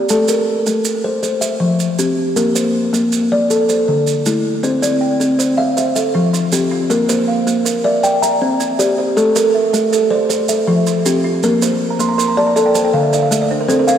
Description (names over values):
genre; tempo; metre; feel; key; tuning
southern african traditional, mbira-style interlocking cycle; 106 BPM (dotted quarters); 12/8; straight; unclear; A4 = 440 Hz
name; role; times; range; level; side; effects
kalimba; arpeggios; 0.0-14.0 s; D3 to Bb5; -14 LUFS; left 1 dB; analog delay
maracas; percussion; 0.1-14.0 s; none; -24 LUFS; right 8 dB; none
buzzing kalimba; arpeggios; 4.8-14.0 s; D3 to C6; -19 LUFS; right 5 dB; none
room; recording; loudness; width
wet lush hall reverb, RT60 2.6 s; dreamy mix soaked in reverb; -13 LUFS; side -9 dB against mid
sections
0.0-13.7 A section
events
kalimba fill 11.7-13.7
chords
0.1 Am; 1.2 F5; 2.4 Bb; 3.5 D5; 4.6 C; 5.8 F; 6.9 Bb; 8.0 C; 9.2 Am; 10.3 F; 11.4 Bb; 12.6 D5